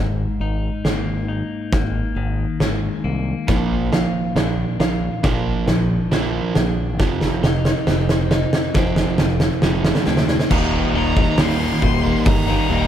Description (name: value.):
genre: post-rock.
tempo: 68 BPM.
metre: 4/4.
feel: straight.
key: Eb major.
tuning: A4 = 440 Hz.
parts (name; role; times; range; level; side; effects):
clean electric guitar; arpeggios; 0.0-12.9 s; Eb2 to F4; -26 LUFS; left 6 dB; phaser, tape echo.
growling fingered electric bass; bass; 0.0-12.9 s; Eb1 to Eb2; -24 LUFS; equal; overdrive.
oversized low-tuned drum kit; drums; 0.8-12.5 s; crash cymbal, hi-hat, kick drum, snare drum; -20 LUFS; equal; none.
overdriven semi-hollow guitar; riff; 3.5-12.9 s; Eb2 to Eb4; -22 LUFS; right 5 dB; none.
sludgy distorted guitar; riff; 10.5-12.9 s; Eb2 to Eb4; -23 LUFS; left 14 dB; overdrive.
clear violin; melody; 11.0-12.9 s; Bb5 to C6; -25 LUFS; left 3 dB; tape echo.
room: light reverb, small room ambience.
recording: none.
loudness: -17 LUFS.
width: side -10 dB against mid.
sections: 0.0-10.5 A section; 10.5-12.9 B section.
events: build-up 0.0-10.5; drum fill 0.0-10.5.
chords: 0.0 Absus2; 3.5 Bb; 7.0 Fm7; 10.5 Eb6.